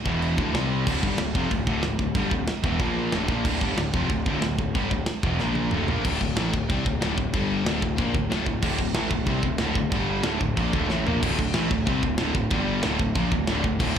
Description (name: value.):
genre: heavy metal.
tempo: 185 BPM.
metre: 4/4.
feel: straight.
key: D minor.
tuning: A4 = 440 Hz.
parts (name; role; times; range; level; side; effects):
distorted electric guitar; riff; 0.0-14.0 s; D2 to C4; -30 LUFS; right 1 dB; overdrive, slapback echo.
sludgy distorted guitar; riff; 0.1-14.0 s; D2 to C4; -28 LUFS; left 8 dB; overdrive, slapback echo.
tight distorted guitar; riff; 0.1-6.1, 8.6-14.0 s; D2 to C4; -32 LUFS; right 14 dB; distortion, slapback echo.
fuzz picked electric bass; bass; 0.1-14.0 s; D1 to C2; -28 LUFS; right 1 dB; overdrive.
tight metal drum kit; drums; 0.1-14.0 s; china cymbal, crash cymbal, kick drum, snare drum, toms; -27 LUFS; right 1 dB; none.
room: small room ambience.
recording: live gig heard through the venue's PA, club reverb.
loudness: -22 LUFS.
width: side -8 dB against mid.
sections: 0.0-6.0 A section; 6.0-11.2 B section; 11.2-14.0 B section.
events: drum fill 5.4-6.0, 10.9-11.2.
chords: 0.0 E5; 0.4 D5; 0.5 C5; 0.9 Dm; 2.8 Bb5; 3.1 Dm; 5.4 Bb5; 5.7 Dm; 6.0 D5; 7.3 G5; 7.7 Dm; 9.9 G5; 10.2 Dm; 11.2 D5; 12.5 G5; 12.8 Dm.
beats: 0.21 0.53 | 0.86 1.18 1.51 1.83 | 2.15 2.48 2.80 3.13 | 3.45 3.78 4.10 4.43 | 4.75 5.07 5.40 5.72 | 6.04 6.37 6.69 7.01 | 7.34 7.66 7.98 8.31 | 8.63 8.95 9.28 9.60 | 9.92 10.25 10.57 10.89 | 11.22 11.54 11.87 12.19 | 12.51 12.84 13.16 13.48 | 13.81.